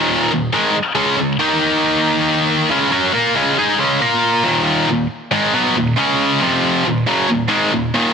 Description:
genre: rock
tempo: 138 BPM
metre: 4/4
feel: straight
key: Eb dorian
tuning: A4 = 440 Hz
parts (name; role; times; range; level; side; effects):
- tight distorted guitar; solo; 0.0-8.1 s; Eb2 to Bb4; -14 LUFS; equal; distortion
room: light reverb, digital ambience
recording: dense, heavily limited modern master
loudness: -14 LUFS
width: side -6 dB against mid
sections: 0.0-4.5 A section; 4.5-8.1 B section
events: none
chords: 0.0 Eb5; 1.0 Db5; 1.4 Eb5; 2.7 Db5; 4.0 Bb5; 4.5 Ebm; 6.0 Db5; 6.4 F5; 6.9 Ebm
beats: 0.10 0.54 | 0.97 1.41 1.84 2.28 | 2.71 3.15 3.58 4.02 | 4.45 4.89 5.33 5.76 | 6.20 6.64 7.07 7.51 | 7.95

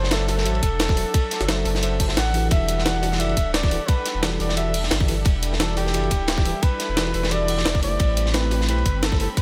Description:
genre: liquid drum and bass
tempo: 175 BPM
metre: 4/4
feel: swing 54% on 16ths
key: E minor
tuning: A4 = 442 Hz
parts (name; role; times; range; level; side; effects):
- warm flugelhorn; melody; 0.0-9.4 s; G4 to F#5; -30 LUFS; equal; delay
- lush unison pad; sustained chords; 0.0-9.4 s; F#3 to B5; -35 LUFS; equal; chorus, sidechain pumping
- warm sub bass; bass; 0.0-9.3 s; D1 to B1; -27 LUFS; equal; none
- crunchy breakbeat drum kit; drums; 0.0-9.4 s; hi-hat, ride cymbal, snare drum; -31 LUFS; equal; high-pass filter on cymbals, high-pass filter on hats, high-pass filter on snare, high-pass filter on room
- mellow tine electric piano; accompaniment; 0.1-9.3 s; E3 to A5; -32 LUFS; equal; none
- jungle sampler-style drum kit; drums; 0.1-9.4 s; hi-hat, snare drum; -29 LUFS; equal; none
- electronic kick drum; drums; 0.6-9.4 s; none; -23 LUFS; equal; none
room: small room ambience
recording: none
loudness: -21 LUFS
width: mono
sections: 0.0-9.4 A section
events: kick drops out 2.2-2.5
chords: 0.0 F#m7b5; 2.5 Em11; 8.0 Am9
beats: 0.12 0.46 0.80 | 1.14 1.49 1.83 2.17 | 2.52 2.86 3.20 3.54 | 3.89 4.23 4.57 4.92 | 5.26 5.60 5.94 6.29 | 6.63 6.97 7.32 7.66 | 8.00 8.34 8.69 9.03 | 9.37

